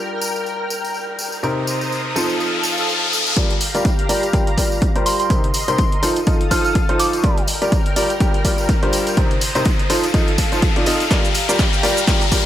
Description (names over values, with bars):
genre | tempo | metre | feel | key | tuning
piano house | 124 BPM | 4/4 | swing 57% on 16ths | G minor | A4 = 440 Hz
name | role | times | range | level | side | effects
analog string pad | sustained chords | 0.0-12.5 s | G4 to F6 | -26 LUFS | equal | ensemble chorus, sidechain pumping
clear concert grand piano | riff | 0.0-12.5 s | C3 to G5 | -22 LUFS | equal | vintage 12-bit sampler grit, sidechain pumping, low-pass filter, dub echo
riser | sound effects | 1.3-12.5 s | none | -24 LUFS | left 3 dB | none
tambourine | percussion | 0.2-12.4 s | none | -28 LUFS | equal | none
organ-like FM bass | bass | 3.4-12.5 s | F1 to G2 | -35 LUFS | equal | none
electronic kick drum | drums | 3.4-12.4 s | none | -18 LUFS | equal | overdrive
punchy analog drum machine | drums | 3.4-12.4 s | hi-hat, shaker, snare drum | -26 LUFS | right 1 dB | high-pass filter on hats, high-pass filter on snare, high-pass filter on perc
soft synth bell | melody | 5.1-7.3 s | C6 to F6 | -23 LUFS | right 2 dB | chorus, dub echo
room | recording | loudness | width
light reverb, digital ambience | none | -15 LUFS | side -12 dB against mid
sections
0.0-3.4 A section; 3.4-12.5 B section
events
riser 1.3-3.4, 3.4-12.5; build-up 3.4-12.5; filter sweep on grand piano 3.4-12.5; drum fill 11.1-12.5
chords
0.0 Gm7; 1.4 Cm7; 2.2 F7; 3.4 Gm7; 5.3 Cm7; 6.0 F7; 7.2 Gm7; 9.2 Cm7; 9.9 F7; 11.1 Gm7